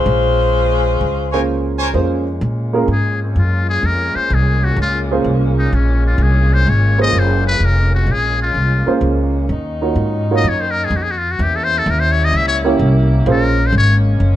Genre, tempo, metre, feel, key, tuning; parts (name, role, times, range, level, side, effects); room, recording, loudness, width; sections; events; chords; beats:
jazz, big band swing; 127 BPM; 4/4; swing 68% on 8ths; Bb minor; A4 = 439 Hz
warm saxophone section; melody; 0.0-1.5 s; Ab3 to C5; -16 LUFS; left 2 dB
upright bass; bass; 0.1-14.4 s; F1 to Bb2; -16 LUFS; equal
dark baby grand piano; accompaniment; 1.3-13.6 s; Bb3 to Db5; -18 LUFS; right 4 dB
bright trumpet section; stabs; 1.3-1.9 s; Bb4 to Ab5; -23 LUFS; right 1 dB
mellow saxophone section; sustained chords; 1.9-14.4 s; Bb2 to E4; -25 LUFS; left 2 dB
trumpet with metal mute; melody; 2.9-14.0 s; C4 to E5; -18 LUFS; left 3 dB
light reverb; dark, warm production; -13 LUFS; side -12 dB against mid
0.0-1.9 A section; 1.9-14.4 B section
muted trumpet solo 1.9-14.4
0.1 Bbm9; 9.5 Ebm9; 11.4 Edim7; 13.3 Bbm9
| 0.06 0.53 1.00 1.47 | 1.94 2.42 2.89 3.36 | 3.83 4.30 4.78 5.25 | 5.72 6.19 6.67 7.14 | 7.61 8.08 8.55 9.02 | 9.49 9.97 10.44 10.91 | 11.38 11.85 12.32 12.79 | 13.27 13.74 14.21